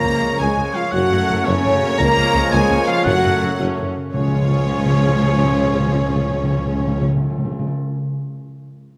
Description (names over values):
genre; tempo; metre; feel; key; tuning
cinematic, heroic adventure film score; 112 BPM (dotted quarters); 6/8; straight; Db major; A4 = 440 Hz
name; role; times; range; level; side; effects
warm symphonic violin section; melody; 0.0-7.0 s; Db5 to Bb5; -31 LUFS; equal; none
clear oboe; second line; 0.0-7.0 s; Db5 to Bb5; -28 LUFS; equal; none
flute section; second line; 0.0-7.0 s; Db5 to Bb5; -31 LUFS; equal; none
rich symphonic violin section; second line; 0.0-7.0 s; Db5 to Bb5; -32 LUFS; equal; none
warm symphonic viola section; accompaniment; 0.0-7.0 s; F3 to Ab4; -32 LUFS; equal; none
bright trombone section; sustained chords; 0.0-7.0 s; F3 to A3; -30 LUFS; equal; none
dark French horn section; sustained chords; 0.0-7.0 s; Db4 to Bb4; -26 LUFS; equal; none
concert harp; arpeggios; 0.0-8.0 s; Gb2 to Db6; -31 LUFS; equal; none
warm trumpet section; stabs; 0.0-7.0 s; Db5; -29 LUFS; equal; none
mellow tuba; bass; 0.0-7.0 s; Gb1 to Db2; -27 LUFS; equal; none
rich symphonic cello section; bass; 0.0-7.0 s; Db3 to Db4; -30 LUFS; equal; none
rich symphonic double bass section; bass; 0.0-7.0 s; Db2 to Gb2; -27 LUFS; equal; none
timpani; percussion; 0.0-7.7 s; Db3; -24 LUFS; equal; none
room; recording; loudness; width
moderate concert hall reverb, RT60 2.4 s; none; -18 LUFS; mono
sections
0.0-4.1 A section; 4.1-6.3 B section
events
none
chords
0.0 Db; 0.9 Gbm; 2.0 Db; 3.1 Gbm; 4.1 Db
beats
0.39 | 0.93 1.46 | 1.99 2.52 | 3.06 3.59 | 4.14 4.67 | 5.21 5.74